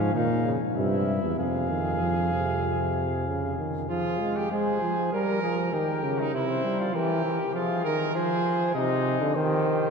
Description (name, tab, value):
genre	classical, imitative canzona for brass ensemble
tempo	98 BPM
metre	4/4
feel	straight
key	F minor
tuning	A4 = 440 Hz
part	mellow cornet	melody	0.0-9.9 s	Ab4 to F5	-31 LUFS	left 7 dB	none
part	warm trumpet	second line	0.0-9.9 s	Db4 to Bb4	-30 LUFS	right 3 dB	none
part	clear trombone	accompaniment	0.0-9.9 s	C3 to Ab3	-28 LUFS	right 2 dB	none
part	mellow bass trombone	bass	0.0-3.5 s	E2 to Bb2	-29 LUFS	equal	none
room	wet cathedral reverb, RT60 5.9 s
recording	dark, warm production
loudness	-24 LUFS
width	side -5 dB against mid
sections	0.0-3.9 A section; 3.9-9.9 B section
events	none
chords	0.1 Bbm; 0.8 C/G; 1.4 Fm; 5.1 Gdim; 6.3 C; 7.6 Fm; 8.8 Cm